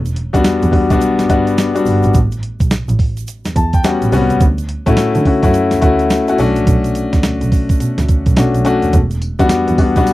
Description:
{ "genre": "R&B, new jack swing", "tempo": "106 BPM", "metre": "4/4", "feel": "swing 62% on 16ths", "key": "E dorian", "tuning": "A4 = 440 Hz", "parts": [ { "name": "rich double bass", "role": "bass", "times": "0.0-10.0 s", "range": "E1 to D3", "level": "-17 LUFS", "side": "right 1 dB", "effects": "none" }, { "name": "crisp 8-bit digital drum machine", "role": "drums", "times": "0.1-10.1 s", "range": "hi-hat, kick drum, snare drum, tambourine", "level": "-15 LUFS", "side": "right 1 dB", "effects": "none" }, { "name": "tube shaker", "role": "percussion", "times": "0.1-10.1 s", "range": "none", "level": "-38 LUFS", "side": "right 18 dB", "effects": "none" }, { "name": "warm concert grand piano", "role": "accompaniment", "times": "0.3-10.1 s", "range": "G3 to A5", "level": "-14 LUFS", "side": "left 3 dB", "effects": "none" } ], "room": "little or no reverb", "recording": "dry, close 1970s-style studio recording", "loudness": "-11 LUFS", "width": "side -17 dB against mid", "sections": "0.0-10.1 A section", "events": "grand piano fill 3.3-4.4", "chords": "0.0 Em7; 2.1 A13; 4.4 Dmaj7; 6.4 Bm7; 8.9 Em7" }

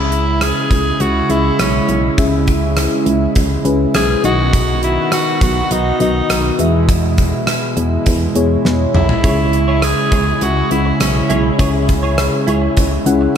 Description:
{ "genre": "1980s-style pop", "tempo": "102 BPM", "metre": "4/4", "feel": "straight", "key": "C# minor", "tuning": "A4 = 440 Hz", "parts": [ { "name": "raspy alto saxophone", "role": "melody", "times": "0.0-11.4 s", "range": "C#4 to G#4", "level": "-21 LUFS", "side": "equal", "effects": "ping-pong delay" }, { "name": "mellow FM electric piano", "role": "accompaniment", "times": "0.0-13.4 s", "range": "B2 to F#5", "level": "-19 LUFS", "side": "left 3 dB", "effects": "chorus" }, { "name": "brassy analog pad", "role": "sustained chords", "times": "0.0-13.4 s", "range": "B2 to F#4", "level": "-20 LUFS", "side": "right 2 dB", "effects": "chorus" }, { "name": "solid FM bass", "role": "bass", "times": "0.0-13.3 s", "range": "B1 to E2", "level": "-18 LUFS", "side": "equal", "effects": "none" }, { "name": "gated 80s drum kit", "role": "drums", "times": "0.1-13.2 s", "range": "hi-hat, kick drum, rim click, snare drum, toms", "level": "-18 LUFS", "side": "equal", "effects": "none" }, { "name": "direct-recorded clean electric guitar", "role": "riff", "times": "9.2-13.3 s", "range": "E4 to C#5", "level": "-24 LUFS", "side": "right 4 dB", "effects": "ensemble chorus, ping-pong delay" } ], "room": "moderate cathedral reverb, RT60 4.9 s", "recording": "dreamy mix soaked in reverb", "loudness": "-12 LUFS", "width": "side -8 dB against mid", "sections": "0.0-13.4 A section", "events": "drum fill 8.7-9.2", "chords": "0.0 C#m; 4.2 B; 6.6 E; 9.2 C#m" }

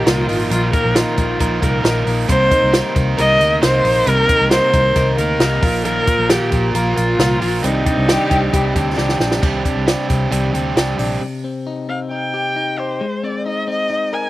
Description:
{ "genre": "jangly indie pop", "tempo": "134 BPM", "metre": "4/4", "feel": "straight", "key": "C minor", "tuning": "A4 = 442 Hz", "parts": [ { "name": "warm viola", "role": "melody", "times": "0.0-8.9, 11.9-14.3 s", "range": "Eb4 to Ab5", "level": "-18 LUFS", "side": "equal", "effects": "slapback echo" }, { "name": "overdriven electric guitar", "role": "accompaniment", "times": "0.0-11.2 s", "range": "Bb2 to Bb4", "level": "-21 LUFS", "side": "right 4 dB", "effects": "none" }, { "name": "direct-recorded clean electric guitar", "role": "arpeggios", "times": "0.0-14.3 s", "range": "Bb2 to Bb4", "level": "-23 LUFS", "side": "left 4 dB", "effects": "none" }, { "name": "vintage muted fingered electric bass", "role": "bass", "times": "0.0-11.2 s", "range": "Ab1 to D2", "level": "-20 LUFS", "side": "equal", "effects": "none" }, { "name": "compact cocktail drum kit", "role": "drums", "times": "0.1-11.1 s", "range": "crash cymbal, hi-hat, kick drum, snare drum", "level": "-18 LUFS", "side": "equal", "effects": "none" }, { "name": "warm symphonic violin section", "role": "second line", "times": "8.1-9.4 s", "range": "D4 to G4", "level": "-23 LUFS", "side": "left 2 dB", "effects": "none" } ], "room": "little or no reverb", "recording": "recorded outdoors, with no room sound", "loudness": "-14 LUFS", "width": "side -16 dB against mid", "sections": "0.0-9.4 A section; 9.4-11.2 B section; 11.2-14.3 C section", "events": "drum fill 9.0-9.4", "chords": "0.0 Bbsus4; 2.3 Cm7; 5.6 Bbsus4; 7.6 Cmadd9; 11.2 Cm; 13.0 Abadd9" }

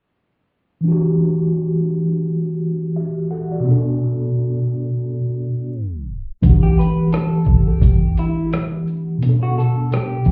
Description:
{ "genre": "lo-fi hip hop", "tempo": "86 BPM", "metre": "4/4", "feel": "swing 56% on 16ths", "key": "E minor", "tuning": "A4 = 438 Hz", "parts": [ { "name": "mellow tine electric piano", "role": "accompaniment", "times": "0.8-10.3 s", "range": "B2 to F#5", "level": "-20 LUFS", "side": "equal", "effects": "cassette tape, low-pass filter" }, { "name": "lo-fi sampler-style drum kit", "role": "drums", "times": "6.4-10.3 s", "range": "hi-hat, kick drum, rim click, shaker", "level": "-17 LUFS", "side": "equal", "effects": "none" }, { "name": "electric guitar through a small old amp", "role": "melody", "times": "6.6-10.3 s", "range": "E4 to B4", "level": "-30 LUFS", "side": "equal", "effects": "low-pass filter" } ], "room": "moderate studio reverb, RT60 0.6 s", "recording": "heard muffled through a wall, cassette tape, club reverb, EQ, tape stop, lossy compression artefacts", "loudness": "-19 LUFS", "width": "mono", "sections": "0.9-6.4 A section; 6.4-10.3 B section", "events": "tape stop 5.7-6.4", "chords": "0.9 Em9; 3.6 Bm7; 6.4 Em9; 9.2 Bm7" }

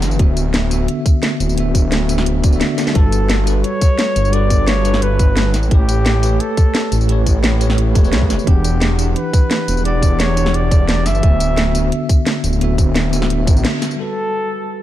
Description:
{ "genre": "liquid drum and bass", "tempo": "174 BPM", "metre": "4/4", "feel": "straight", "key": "unclear", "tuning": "A4 = 441 Hz", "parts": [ { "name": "bell-like tine electric piano", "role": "accompaniment", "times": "0.0-14.8 s", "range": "D3 to F#5", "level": "-21 LUFS", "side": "equal", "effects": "fast stereo tremolo, digital delay" }, { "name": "swelling detuned saw bass", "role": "bass", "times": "0.0-13.6 s", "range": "D1 to C#2", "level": "-17 LUFS", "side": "equal", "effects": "none" }, { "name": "garage drum kit", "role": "drums", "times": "0.0-14.0 s", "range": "hi-hat, snare drum, tambourine", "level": "-20 LUFS", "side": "equal", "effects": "low-pass filter on perc, low-pass filter on hats, low-pass filter on snare, low-pass filter on room" }, { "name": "electronic kick drum", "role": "drums", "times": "0.2-13.5 s", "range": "none", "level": "-12 LUFS", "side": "equal", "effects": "none" }, { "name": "warm flugelhorn", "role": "melody", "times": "3.0-14.8 s", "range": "G4 to E5", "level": "-22 LUFS", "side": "equal", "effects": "digital delay" } ], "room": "light reverb, digital ambience", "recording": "dark, warm production", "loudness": "-13 LUFS", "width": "side -13 dB against mid", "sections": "0.0-14.0 A section", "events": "drop 0.0-14.0; drum fill 2.8; break 13.6-14.0; band accent 13.6", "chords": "0.2 D69; 3.0 Gmaj9; 5.5 A9; 8.5 Em9; 11.2 D69; 14.0 Gmaj9" }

